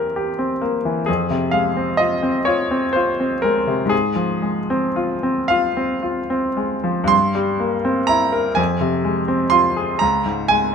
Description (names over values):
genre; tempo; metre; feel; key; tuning
classical, romantic nocturne for solo piano; 36-44 BPM (dotted quarters); 6/8; rubato; F minor; A4 = 440 Hz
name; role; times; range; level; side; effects
bright grand piano; solo; 0.0-10.7 s; Db2 to C6; -17 LUFS; equal; none
room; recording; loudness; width
moderate stone room reverb, RT60 1.1 s; none; -17 LUFS; side -6 dB against mid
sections
0.0-10.7 A section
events
none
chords
0.0 C7/E; 1.1 Fm; 3.9 Fm/Ab; 7.1 C7/G; 8.6 Fm; 10.0 Db5